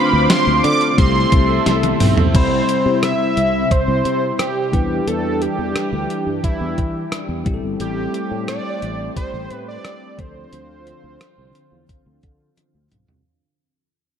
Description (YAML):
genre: 1980s-style pop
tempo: 88 BPM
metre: 4/4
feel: straight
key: C major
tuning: A4 = 441 Hz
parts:
  - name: fat analog lead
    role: melody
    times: 0.0-12.6 s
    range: E4 to D6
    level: -21 LUFS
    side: right 2 dB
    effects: diffuse ambient delay
  - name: bell-like tine electric piano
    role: accompaniment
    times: 0.0-13.3 s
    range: F3 to B5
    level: -23 LUFS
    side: left 5 dB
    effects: none
  - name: crunchy overdriven guitar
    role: accompaniment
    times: 0.0-2.4 s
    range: C3 to D4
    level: -28 LUFS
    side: right 4 dB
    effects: ensemble chorus
  - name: lush unison pad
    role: sustained chords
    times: 0.0-13.2 s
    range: C3 to D6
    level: -25 LUFS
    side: right 1 dB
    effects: chorus
  - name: sustaining fretless electric bass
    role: bass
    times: 0.1-13.2 s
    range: G1 to E3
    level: -22 LUFS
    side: equal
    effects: lush chorus
  - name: clean 12-bit digital drum machine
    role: drums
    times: 0.3-13.2 s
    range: crash cymbal, hi-hat, kick drum, rim click, snare drum, tambourine, toms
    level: -19 LUFS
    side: equal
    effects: none
room: wet plate reverb, RT60 2.5 s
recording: dreamy mix soaked in reverb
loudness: -16 LUFS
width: side -8 dB against mid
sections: 0.0-2.3 A section; 2.3-13.3 B section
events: drum fill 1.7-2.3, 12.6-13.3; fade-out 2.3-13.3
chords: 0.0 Dm7; 1.0 C6; 2.3 Cmaj7; 4.7 Em7; 7.5 Am7; 10.2 Dm7